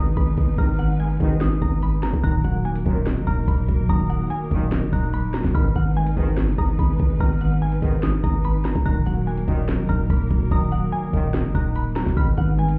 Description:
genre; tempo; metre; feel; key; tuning
hip hop, trap; 145 BPM; 4/4; half-time; Eb minor; A4 = 437 Hz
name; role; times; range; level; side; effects
glassy wavetable pluck; melody; 0.0-12.8 s; Gb5 to Cb6; -35 LUFS; equal; chorus, digital delay
delicate synth tine bell; second line; 0.0-12.8 s; Eb6 to Gb6; -40 LUFS; equal; chorus, digital delay
mellow electric guitar; accompaniment; 0.0-12.8 s; Ab2 to Eb5; -30 LUFS; equal; none
warm studio string section; sustained chords; 0.0-12.8 s; Gb3 to Cb5; -35 LUFS; equal; none
growling 808-style bass; bass; 0.0-12.8 s; Eb1 to Ab1; -25 LUFS; equal; none
trap drum kit; drums; 0.2-12.8 s; hi-hat, kick drum, snare drum; -25 LUFS; equal; none
clear brass ensemble; stabs; 0.6-12.3 s; Gb2 to Eb3; -36 LUFS; equal; digital delay
room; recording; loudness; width
little or no reverb; heard muffled through a wall, club reverb, EQ; -21 LUFS; mono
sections
0.0-2.2 A section; 2.2-12.8 A section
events
none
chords
0.0 Abm; 2.2 Ebm; 5.5 Abm; 8.9 Ebm; 12.2 Abm

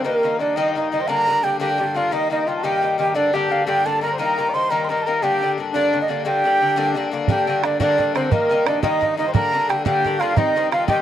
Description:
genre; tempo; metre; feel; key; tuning
celtic folk, Celtic jig; 116 BPM (dotted quarters); 6/8; straight; G minor; A4 = 439 Hz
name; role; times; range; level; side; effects
wooden flute; melody; 0.0-11.0 s; Bb4 to C6; -20 LUFS; right 3 dB; none
mellow trumpet; second line; 0.0-11.0 s; Bb3 to D5; -24 LUFS; left 4 dB; tape echo
Irish bouzouki; accompaniment; 0.0-11.0 s; G2 to Eb4; -24 LUFS; left 6 dB; none
bodhran; percussion; 7.3-11.0 s; none; -21 LUFS; right 4 dB; none
room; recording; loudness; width
light reverb; dry, close 1970s-style studio recording; -17 LUFS; side -11 dB against mid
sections
0.0-7.3 A section; 7.3-11.0 A section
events
none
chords
0.0 Eb; 1.1 Gm; 2.1 Eb; 3.2 Gm; 4.2 Eb; 5.2 Gm; 8.3 Eb; 9.3 Gm; 10.4 Cm

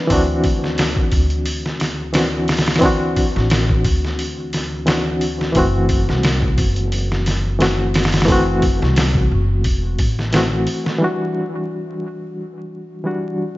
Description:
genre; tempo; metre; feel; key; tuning
trip hop; 88 BPM; 4/4; swing 54% on 16ths; E minor; A4 = 438 Hz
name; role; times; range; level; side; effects
barky reed electric piano; accompaniment; 0.0-13.6 s; E3 to B4; -20 LUFS; left 1 dB; overdrive, fast tremolo, tape echo
upright bass; bass; 0.1-10.6 s; E1 to D2; -21 LUFS; equal; none
trip hop sampler-style drum kit; drums; 0.1-11.0 s; hi-hat, kick drum, snare drum; -19 LUFS; equal; none
room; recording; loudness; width
light reverb, digital ambience; vinyl crackle, nothing above 7.7 kHz; -16 LUFS; side -17 dB against mid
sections
0.0-11.0 A section; 11.0-13.6 B section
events
none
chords
0.1 D9; 5.6 F#m7b5; 11.0 Em9

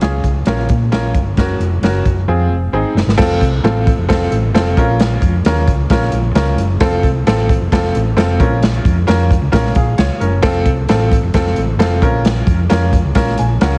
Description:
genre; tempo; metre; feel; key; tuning
uptempo 1960s-style soul; 132 BPM; 4/4; straight; unclear; A4 = 441 Hz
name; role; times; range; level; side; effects
bright upright piano; accompaniment; 0.0-13.8 s; C4 to Ab5; -20 LUFS; equal; none
hollow-body short-scale fingered electric bass; bass; 0.0-13.8 s; F1 to Bb2; -19 LUFS; equal; none
swinging big-band drum kit; drums; 0.0-13.7 s; crash cymbal, hi-hat, kick drum, snare drum; -18 LUFS; equal; vintage 12-bit sampler grit
room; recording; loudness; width
light reverb, small room ambience; heavily compressed radio sound, cassette tape; -14 LUFS; mono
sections
0.0-3.2 A section; 3.2-13.8 B section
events
drum fill 2.3-3.2; upright piano fill 13.2-13.8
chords
0.5 Bbm; 1.4 Gb; 2.3 Fm; 2.7 Ab; 3.2 F; 4.8 Bbm; 6.8 F; 8.4 Bbm; 10.4 F; 12.0 Bbm

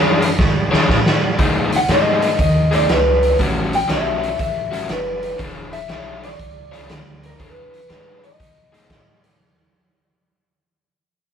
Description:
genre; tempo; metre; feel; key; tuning
electric blues shuffle; 120 BPM; 4/4; swing 67% on 8ths; E mixolydian; A4 = 442 Hz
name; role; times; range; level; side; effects
electric guitar through a small old amp; melody; 0.0-9.2 s; A#4 to G5; -20 LUFS; left 1 dB; none
crunchy overdriven guitar; riff; 0.0-9.0 s; A2 to C#5; -21 LUFS; left 3 dB; none
upright bass; bass; 0.0-9.4 s; E1 to B2; -23 LUFS; right 1 dB; none
raw garage drum kit; drums; 0.2-9.3 s; hi-hat, kick drum, snare drum; -19 LUFS; right 1 dB; none
room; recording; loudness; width
moderate studio reverb, RT60 0.5 s; rough rehearsal-room recording, warm saturation; -15 LUFS; side -8 dB against mid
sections
0.0-9.4 A section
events
fade-out 0.0-9.4; drum fill 0.4-1.4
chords
0.0 E13; 1.4 B13; 3.4 A13; 5.4 E6; 8.4 B6

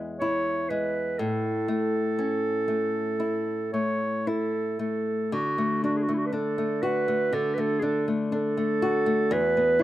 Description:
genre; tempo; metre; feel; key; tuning
celtic folk, Celtic slow air; 54-63 BPM; 4/4; rubato; unclear; A4 = 440 Hz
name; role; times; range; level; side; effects
nylon-string guitar; accompaniment; 0.0-9.8 s; E2 to F#4; -27 LUFS; left 2 dB; none
mellow clarinet; melody; 0.2-9.8 s; E4 to C#5; -26 LUFS; right 2 dB; none
room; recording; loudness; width
light reverb; recorded outdoors, with no room sound; -24 LUFS; side -14 dB against mid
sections
0.0-5.3 A section; 5.3-9.8 B section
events
none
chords
0.0 E; 1.2 A; 5.3 D; 9.3 Esus2

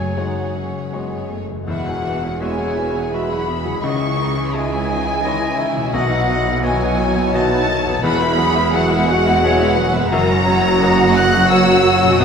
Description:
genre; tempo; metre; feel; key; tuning
cinematic, emotional film score for orchestra; 86 BPM; 3/4; rubato; E major; A4 = 439 Hz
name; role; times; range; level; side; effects
warm studio violin section; melody; 0.0-12.2 s; F#5 to F#6; -22 LUFS; left 1 dB; none
rich studio violin section; second line; 0.0-12.2 s; A#3 to F#5; -25 LUFS; left 3 dB; none
warm clarinet; second line; 0.0-12.2 s; G#4 to E5; -26 LUFS; equal; none
bright concert grand piano; accompaniment; 0.0-12.2 s; E1 to E5; -24 LUFS; left 1 dB; none
warm studio viola section; accompaniment; 0.0-12.2 s; D#3 to F#4; -23 LUFS; right 1 dB; none
concert harp; arpeggios; 0.0-12.2 s; E2 to F#5; -28 LUFS; left 6 dB; none
rich studio cello section; bass; 0.0-12.2 s; E2 to C#3; -24 LUFS; right 4 dB; none
warm studio double bass section; bass; 0.0-12.2 s; E1 to C#2; -24 LUFS; right 3 dB; none
flute section; second line; 1.7-12.2 s; F#5 to F#6; -25 LUFS; equal; none
mellow French horn section; sustained chords; 1.7-12.2 s; E3 to G#4; -24 LUFS; equal; none
room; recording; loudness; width
wet concert hall reverb, RT60 1.8 s; minimal, uncompressed stereo recording; -15 LUFS; side -6 dB against mid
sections
0.0-1.7 A section; 1.7-12.2 B section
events
none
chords
0.0 F#madd9; 1.7 Eadd9; 3.8 C#madd9; 5.9 B; 8.0 Eadd9; 10.1 F#

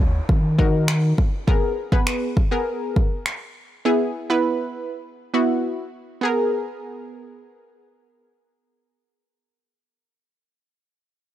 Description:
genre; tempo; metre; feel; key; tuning
dance-pop; 101 BPM; 4/4; straight; G# minor; A4 = 440 Hz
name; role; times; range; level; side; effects
analog pluck; accompaniment; 0.0-9.9 s; B3 to C#5; -22 LUFS; equal; chorus, sidechain pumping
warm sub bass; bass; 0.0-1.1 s; D#2 to D#3; -20 LUFS; equal; sidechain pumping
downlifter; sound effects; 0.0-1.5 s; none; -42 LUFS; equal; none
deep house drum kit; drums; 0.3-3.4 s; finger snaps, kick drum; -20 LUFS; equal; none
room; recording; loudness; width
little or no reverb; dry, gritty hardware recording, transformer saturation; -19 LUFS; side -12 dB against mid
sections
0.0-6.2 A section; 6.2-8.6 B section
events
none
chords
0.0 D#m; 1.5 G#madd9; 3.9 E; 6.2 G#madd9

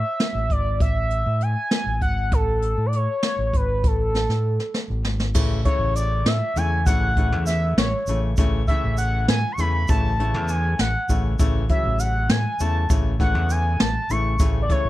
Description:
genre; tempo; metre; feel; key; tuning
progressive instrumental, band music in an uneven meter; 199 BPM (eighths); 5/8; straight; A major; A4 = 439 Hz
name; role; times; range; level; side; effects
expressive synth lead; melody; 0.0-14.9 s; A4 to C#6; -25 LUFS; equal; chorus, plate reverb, ping-pong delay
jazz brush drum kit; drums; 0.2-14.8 s; crash cymbal, hi-hat, kick drum, snare drum; -22 LUFS; equal; none
overdriven fingered electric bass; bass; 0.3-14.9 s; G#1 to A2; -23 LUFS; equal; none
clear grand piano; accompaniment; 5.3-14.9 s; C#3 to A3; -29 LUFS; left 4 dB; plate reverb
tube shaker; percussion; 5.4-14.9 s; none; -38 LUFS; right 5 dB; none
room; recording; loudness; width
little or no reverb; dark, warm production; -19 LUFS; side -15 dB against mid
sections
0.0-5.4 A section; 5.4-14.9 B section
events
drum fill 4.1-5.4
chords
0.0 Amaj7; 5.4 A

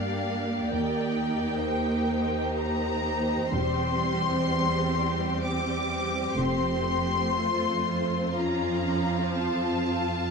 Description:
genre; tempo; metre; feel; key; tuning
classical, slow romantic movement for string orchestra; 62 BPM; 3/4; uneven beats, rubato; F major from 3.5 s; A4 = 440 Hz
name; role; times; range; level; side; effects
clear symphonic violin section; melody; 0.0-10.3 s; F5 to D6; -31 LUFS; left 5 dB; none
warm symphonic violin section; second line; 0.0-10.3 s; F4 to F5; -31 LUFS; left 1 dB; none
bright symphonic viola section; accompaniment; 0.0-10.3 s; F3 to Eb4; -30 LUFS; right 2 dB; none
warm symphonic cello section; bass; 0.0-10.3 s; Eb2 to G2; -31 LUFS; right 2 dB; none
clear chamber double bass section; bass; 0.7-7.3 s; E1 to Eb2; -33 LUFS; right 1 dB; none
room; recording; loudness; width
light reverb; dark, warm production; -24 LUFS; side -5 dB against mid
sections
0.0-10.3 A section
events
none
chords
0.0 Gm; 0.7 Cm7/Eb; 3.5 C/E; 6.4 F; 8.4 Bbm/F; 9.3 F

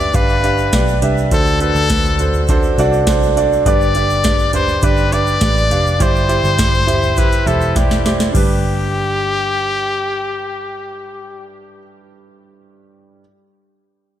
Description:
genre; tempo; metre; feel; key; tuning
piano-driven pop; 102 BPM; 4/4; straight; G major; A4 = 440 Hz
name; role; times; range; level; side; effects
bright trumpet; melody; 0.0-11.5 s; G4 to D5; -19 LUFS; left 3 dB; none
clear concert grand piano; accompaniment; 0.0-13.2 s; G2 to A5; -19 LUFS; right 3 dB; slapback echo
vintage muted picked electric bass; bass; 0.0-11.8 s; E1 to D2; -19 LUFS; equal; none
booming analog drum machine; drums; 0.0-8.5 s; crash cymbal, hi-hat, kick drum, snare drum, toms; -18 LUFS; equal; overdrive
tube shaker; percussion; 0.0-8.6 s; none; -37 LUFS; right 6 dB; none
room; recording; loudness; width
moderate lush hall reverb, RT60 3.1 s; big arena sound; -13 LUFS; side -11 dB against mid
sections
0.0-8.3 A section; 8.3-10.7 B section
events
grand piano fill 2.5-3.7; drum fill 7.8-8.3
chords
0.0 G; 1.3 D7; 3.7 G; 6.0 Cadd9/G; 8.3 G

